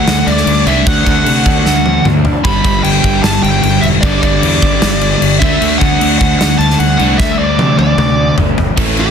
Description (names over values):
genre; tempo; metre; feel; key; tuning
hard rock; 152 BPM; 4/4; straight; unclear; A4 = 440 Hz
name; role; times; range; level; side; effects
bluesy overdriven lead guitar; melody; 0.0-9.1 s; G4 to B5; -16 LUFS; right 1 dB; distortion, slapback echo
crunchy overdriven guitar; riff; 0.0-9.1 s; G2 to D4; -17 LUFS; left 10 dB; none
crunchy overdriven guitar; riff; 0.0-9.1 s; G2 to D4; -20 LUFS; right 2 dB; none
overdriven semi-hollow guitar; riff; 0.0-9.1 s; G2 to D4; -19 LUFS; right 10 dB; none
fuzz fingered electric bass; bass; 0.0-9.1 s; E1 to C3; -18 LUFS; equal; overdrive
huge arena drum kit; drums; 0.1-9.1 s; crash cymbal, kick drum, snare drum, toms; -14 LUFS; equal; none
room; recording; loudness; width
small room ambience; dense, heavily limited modern master; -9 LUFS; side -7 dB against mid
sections
0.0-8.8 A section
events
drum fill 1.7-2.4, 7.2-8.8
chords
0.0 D; 2.4 G5; 5.4 D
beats
0.07 0.47 | 0.86 1.26 1.66 2.05 | 2.45 2.84 3.24 3.63 | 4.03 4.42 4.82 5.21 | 5.61 6.00 6.40 6.80 | 7.19 7.59 7.98 8.38 | 8.77